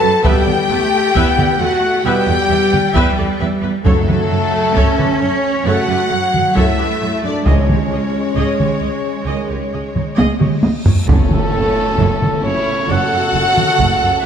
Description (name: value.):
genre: cinematic, epic orchestral film score.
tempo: 66 BPM.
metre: 4/4.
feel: straight.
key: F# phrygian.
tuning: A4 = 440 Hz.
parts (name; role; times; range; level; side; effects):
rich symphonic violin section; melody; 0.0-14.2 s; C#4 to A5; -26 LUFS; left 5 dB; none.
warm symphonic violin section; second line; 0.0-14.2 s; A4 to A5; -24 LUFS; left 2 dB; none.
warm symphonic viola section; accompaniment; 0.0-14.2 s; A3 to E5; -25 LUFS; equal; none.
dark French horn section; sustained chords; 0.0-14.3 s; A3 to A4; -21 LUFS; left 4 dB; none.
mellow trumpet section; stabs; 0.0-14.3 s; A4 to A5; -20 LUFS; right 1 dB; none.
clear symphonic cello section; bass; 0.0-14.1 s; F#2 to C#4; -22 LUFS; right 2 dB; none.
clear symphonic double bass section; bass; 0.0-13.9 s; F#1 to F#2; -22 LUFS; right 4 dB; none.
warm trombone section; sustained chords; 0.2-14.3 s; B2 to B3; -27 LUFS; right 4 dB; none.
taiko ensemble; drums; 0.2-14.3 s; none; -17 LUFS; equal; none.
timpani; percussion; 3.8-8.8 s; F#2 to C#3; -24 LUFS; equal; none.
reverse cymbal and impact; sound effects; 10.8-14.3 s; none; -25 LUFS; equal; none.
tam-tam; percussion; 11.1-14.3 s; none; -26 LUFS; left 2 dB; none.
room: moderate concert hall reverb, RT60 2.1 s.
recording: none.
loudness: -13 LUFS.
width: side -8 dB against mid.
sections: 0.0-11.1 A section; 11.1-14.3 B section.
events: drum fill 10.2-11.1; reverse cymbal 10.8-11.1; band accent 11.1-12.0; impact 11.1-14.3.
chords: 0.2 Em; 3.9 F#m; 7.5 C#sus2; 11.1 F#m.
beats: | 0.24 1.15 2.05 2.96 | 3.86 4.76 5.67 6.57 | 7.48 8.38 9.28 10.19 | 11.09 11.99 12.89 13.80.